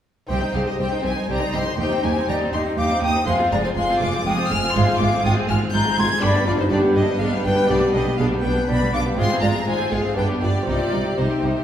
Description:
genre	classical, baroque-style concerto movement with solo episodes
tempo	122 BPM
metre	3/4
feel	straight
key	C minor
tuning	A4 = 439 Hz
part	mellow hollow concert flute	melody	0.3-11.6 s	Eb4 to C6	-23 LUFS	left 2 dB	none
part	rich chamber violin section	melody	0.3-11.6 s	C5 to Ab6	-26 LUFS	left 3 dB	none
part	rich chamber violin section	second line	0.3-11.6 s	B3 to C5	-27 LUFS	equal	none
part	lute	accompaniment	0.3-11.6 s	Eb2 to C5	-29 LUFS	equal	none
part	rich chamber viola section	accompaniment	0.3-11.6 s	G3 to Eb4	-27 LUFS	right 1 dB	none
part	clear chamber double bass section	bass	0.3-11.5 s	F1 to Eb2	-26 LUFS	right 2 dB	none
part	dark chamber cello section	bass	0.3-11.5 s	C2 to C3	-26 LUFS	right 2 dB	none
room	wet recital hall reverb, RT60 1.3 s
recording	heard from further back in the room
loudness	-18 LUFS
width	side -10 dB against mid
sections	0.3-11.6 A section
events	none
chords	0.3 Cm; 1.8 Cm/Eb; 3.3 Fm; 4.7 Fm/Ab; 6.2 G; 7.7 G/B; 9.2 Fm/Ab; 10.2 G; 10.7 Cm

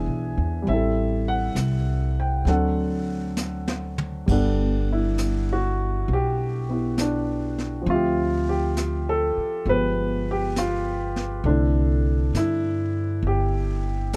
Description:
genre	jazz ballad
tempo	67 BPM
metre	4/4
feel	swing 68% on 8ths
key	G major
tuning	A4 = 440 Hz
part	warm baby grand piano	accompaniment	0.0-14.2 s	D3 to G#5	-27 LUFS	equal	none
part	upright bass	bass	0.0-14.2 s	G1 to G2	-27 LUFS	equal	none
part	jazz brush drum kit	drums	0.7-14.2 s	brushed snare drum, hi-hat, kick drum, ride cymbal, snare drum, toms	-35 LUFS	equal	none
room	little or no reverb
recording	close, detailed microphones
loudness	-24 LUFS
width	mono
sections	0.0-4.3 A section; 4.3-14.2 A section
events	drum fill 3.4-4.3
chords	0.0 E7; 0.7 Am7; 2.5 D7; 4.3 Gmaj9; 7.9 Dm11; 9.7 G7b9; 11.4 C69

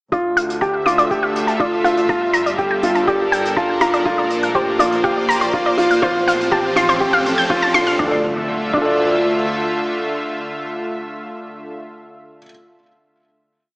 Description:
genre	piano and strings electronica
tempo	122 BPM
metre	4/4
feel	straight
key	D minor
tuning	A4 = 440 Hz
part	lush unison pad	sustained chords	0.1-11.9 s	D3 to E5	-22 LUFS	equal	chorus, sidechain pumping
part	analog pluck	arpeggios	0.1-8.9 s	C5 to G6	-19 LUFS	equal	chorus, sidechain pumping, tape echo
part	felt-muted upright piano	riff	0.1-12.5 s	D4 to D5	-18 LUFS	equal	tape echo
part	rich symphonic double bass section	bass	0.1-9.4 s	G1 to D2	-30 LUFS	equal	tube saturation, sidechain pumping
part	electronic kick drum	drums	0.1-8.9 s	none	-33 LUFS	equal	none
part	hi-hat	drums	0.1-8.0 s	none	-34 LUFS	right 1 dB	none
part	riser and impact	sound effects	4.2-11.7 s	none	-30 LUFS	equal	none
room	wet recital hall reverb, RT60 1.4 s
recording	small speaker sound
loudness	-15 LUFS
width	side -27 dB against mid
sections	0.1-8.0 build; 8.0-11.9 final chord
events	build-up 0.1-8.0; filter sweep on synth arpeggio sound 0.1-8.0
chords	0.1 Dm; 2.1 Gmadd9; 4.1 Bbadd9; 6.0 F/A; 8.0 Dm

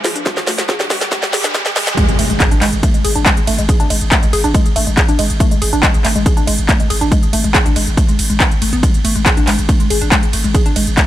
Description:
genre	driving peak-time techno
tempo	140 BPM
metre	4/4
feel	straight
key	unclear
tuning	A4 = 442 Hz
part	woody wave-folded pluck	riff	0.0-11.1 s	G#3 to G#4	-19 LUFS	left 1 dB	chorus, tube saturation, sidechain pumping, ping-pong delay
part	techno drum kit	drums	0.0-11.1 s	handclaps, hi-hat, ride cymbal, snare drum	-17 LUFS	equal	overdrive
part	riser and impact	sound effects	0.0-3.7 s	none	-21 LUFS	right 1 dB	none
part	electronic kick drum	drums	0.3-11.1 s	none	-14 LUFS	equal	overdrive
part	growling 808-style bass	bass	2.2-11.0 s	G#1	-19 LUFS	equal	overdrive, sidechain pumping, low-pass filter
room	digital ambience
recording	high-pass filter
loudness	-12 LUFS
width	side -13 dB against mid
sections	0.0-2.0 A section; 2.0-11.1 B section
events	build-up 0.0-2.0; drum fill 0.0-2.0; riser 0.0-2.0; filter sweep on synth arpeggio sound 0.0-2.0; drop 2.0-11.1; impact 2.0-3.7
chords	0.0 D5; 2.0 N.C.

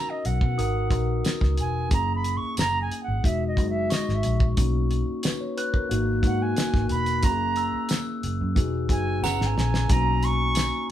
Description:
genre	lush 1970s-style soul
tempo	90 BPM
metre	4/4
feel	straight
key	B major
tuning	A4 = 440 Hz
part	concert flute	melody	0.0-10.9 s	D#5 to C#6	-28 LUFS	right 3 dB	none
part	mellow tine electric piano	accompaniment	0.0-10.9 s	G#3 to C#5	-29 LUFS	left 2 dB	none
part	cloth-damped thuddy drum kit	drums	0.2-10.7 s	hi-hat, kick drum, snare drum	-25 LUFS	equal	none
part	vintage muted fingered electric bass	bass	0.3-10.7 s	E1 to B2	-26 LUFS	equal	none
part	glockenspiel with soft plastic mallets	texture	0.6-10.9 s	G#5 to F#6	-36 LUFS	equal	none
part	tambourine	percussion	1.2-10.7 s	none	-38 LUFS	right 5 dB	none
room	moderate studio ambience, RT60 0.5 s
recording	band playing live in one room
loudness	-22 LUFS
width	side -11 dB against mid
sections	0.0-9.9 A section; 9.9-10.9 B section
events	flute solo 0.0-9.9; drum fill 9.2-9.9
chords	0.0 Bmaj7; 0.6 G#m9; 1.9 F#7; 3.2 Emaj7; 4.6 Bmaj7; 5.9 G#m9; 7.2 F#7; 8.6 Emaj7; 9.2 F#7sus4; 9.9 Bmaj9

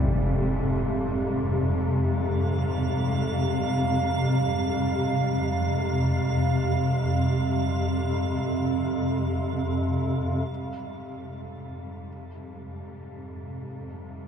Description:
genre	dark ambient drone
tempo	free time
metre	none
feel	none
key	F harmonic minor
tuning	A4 = 441 Hz
part	warm studio cello section	sustained chords	0.0-14.3 s	Ab2 to G3	-36 LUFS	equal	none
part	clear concert grand piano	arpeggios	0.0-10.5 s	E3 to G3	-45 LUFS	equal	none
part	swarming drone	drone	0.0-14.3 s	F2 to C3	-25 LUFS	equal	built-in reverb
part	icy glass pad	texture	2.3-10.5 s	F5	-33 LUFS	right 6 dB	chorus, built-in reverb
room	wet huge ambient reverb, RT60 8.2 s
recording	none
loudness	-23 LUFS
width	side -8 dB against mid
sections	0.0-10.5 A section; 10.5-14.3 A section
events	fade-out on cello section 0.0-10.5; filter sweep on synth drone 0.0-10.5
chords	0.0 Fmadd9

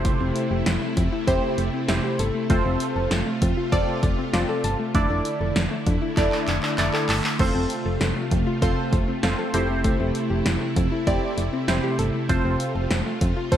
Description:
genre	synth-pop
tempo	98 BPM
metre	4/4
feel	straight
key	F major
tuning	A4 = 441 Hz
part	warm analog keys	accompaniment	0.0-13.6 s	C4 to D5	-27 LUFS	right 1 dB	chorus, phaser, shimmer reverb
part	string machine, violas	sustained chords	0.0-13.6 s	C3 to F4	-28 LUFS	equal	ensemble chorus, shimmer reverb
part	soft round pluck	arpeggios	0.0-13.5 s	A3 to A5	-30 LUFS	left 3 dB	chorus, digital delay, shimmer reverb
part	solid FM bass	bass	0.0-13.6 s	F1 to F2	-26 LUFS	equal	none
part	punchy analog drum machine	drums	0.0-13.6 s	crash cymbal, handclaps, hi-hat, kick drum, snare drum	-25 LUFS	equal	gated reverb
room	moderate lush hall reverb, RT60 1.9 s, digital ambience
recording	bright 1980s-style digital production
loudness	-20 LUFS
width	side -10 dB against mid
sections	0.0-13.6 A section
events	drum fill 6.2-7.4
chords	0.0 C6/F; 2.5 F; 4.9 Dsus2/F; 7.4 F; 9.5 C6/F; 12.3 F

